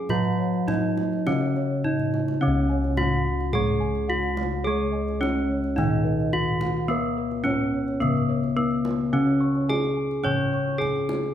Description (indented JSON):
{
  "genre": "Javanese gamelan",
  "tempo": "107 BPM",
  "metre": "4/4",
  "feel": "straight",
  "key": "Db slendro",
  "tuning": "A4 = 439 Hz",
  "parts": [
    { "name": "gamelan-type bronze metallophone", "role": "melody", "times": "0.0-11.3 s", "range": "Cb4-45c to Db5", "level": "-25 LUFS", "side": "equal", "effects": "none" },
    { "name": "gamelan-type bronze metallophone", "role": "accompaniment", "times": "0.0-11.3 s", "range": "Db3 to Db4", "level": "-28 LUFS", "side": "equal", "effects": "none" },
    { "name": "gamelan-type bronze metallophone", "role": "arpeggios", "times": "0.0-11.3 s", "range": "Cb5-45c to Db6", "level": "-36 LUFS", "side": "right 5 dB", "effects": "none" },
    { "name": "gamelan-type bossed gongs", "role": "bass", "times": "0.0-11.3 s", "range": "Db2 to Cb5-45c", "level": "-28 LUFS", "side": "left 3 dB", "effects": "none" },
    { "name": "gamelan-type bossed gongs", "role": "arpeggios", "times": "0.1-11.1 s", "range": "Cb5-45c to Db6", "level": "-36 LUFS", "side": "left 6 dB", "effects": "none" },
    { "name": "kendang", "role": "percussion", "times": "0.1-11.3 s", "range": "none", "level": "-32 LUFS", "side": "right 2 dB", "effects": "none" }
  ],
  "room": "wet recital hall reverb, RT60 1.4 s",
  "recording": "none",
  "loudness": "-22 LUFS",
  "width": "side -10 dB against mid",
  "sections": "0.0-2.4 A section; 2.4-11.3 B section",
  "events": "drum fill 1.9-2.4",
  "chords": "none"
}